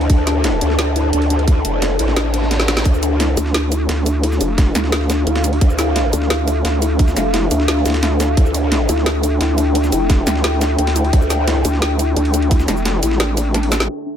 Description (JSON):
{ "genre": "dark technical drum and bass", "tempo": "174 BPM", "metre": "4/4", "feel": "straight", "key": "D minor", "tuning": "A4 = 438 Hz", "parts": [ { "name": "deep dark ambient pad", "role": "sustained chords", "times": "0.0-14.2 s", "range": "D4 to A5", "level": "-22 LUFS", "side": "left 1 dB", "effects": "chorus, built-in reverb, sidechain pumping" }, { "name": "soft round pluck", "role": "arpeggios", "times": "0.0-14.1 s", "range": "D4 to E4", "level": "-22 LUFS", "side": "left 4 dB", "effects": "chorus, sidechain pumping, ping-pong delay" }, { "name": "growl bass", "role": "bass", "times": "0.0-3.4, 5.6-6.1, 8.4-8.9, 11.1-11.6 s", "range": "F1 to D2", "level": "-18 LUFS", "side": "equal", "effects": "chorus, overdrive, sidechain pumping" }, { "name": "breakbeat sampler-style drum kit", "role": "drums", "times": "0.0-13.8 s", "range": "ride cymbal, snare drum", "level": "-28 LUFS", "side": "right 1 dB", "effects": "high-pass filter on cymbals, high-pass filter on snare" }, { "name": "drum and bass drum kit", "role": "drums", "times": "0.1-14.0 s", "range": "cabasa, crash cymbal, hi-hat, snare drum", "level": "-21 LUFS", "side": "right 1 dB", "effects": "none" }, { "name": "electronic kick drum", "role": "drums", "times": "0.1-12.6 s", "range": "none", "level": "-13 LUFS", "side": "equal", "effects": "none" }, { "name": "reverse cymbal and zap", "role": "sound effects", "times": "2.3-2.9 s", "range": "none", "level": "-30 LUFS", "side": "right 2 dB", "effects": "none" }, { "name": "vowel-sweep wobble bass", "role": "bass", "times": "3.4-13.9 s", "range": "F1 to D2", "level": "-18 LUFS", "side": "equal", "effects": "chorus" } ], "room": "light reverb, digital ambience", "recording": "low-pass filter", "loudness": "-14 LUFS", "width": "side -9 dB against mid", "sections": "0.0-13.9 A section", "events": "filter sweep on synth pluck 0.0-13.9; reverse cymbal 2.3-2.9; drum fill 2.6, 13.7", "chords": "0.0 Dmadd9", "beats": "| 0.10 0.44 0.79 1.13 | 1.48 1.82 2.17 2.51 | 2.85 3.20 3.54 3.89 | 4.23 4.58 4.92 5.27 | 5.61 5.96 6.30 6.65 | 6.99 7.34 7.68 8.03 | 8.37 8.72 9.06 9.41 | 9.75 10.10 10.44 10.79 | 11.13 11.48 11.82 12.17 | 12.51 12.86 13.20 13.54 | 13.89" }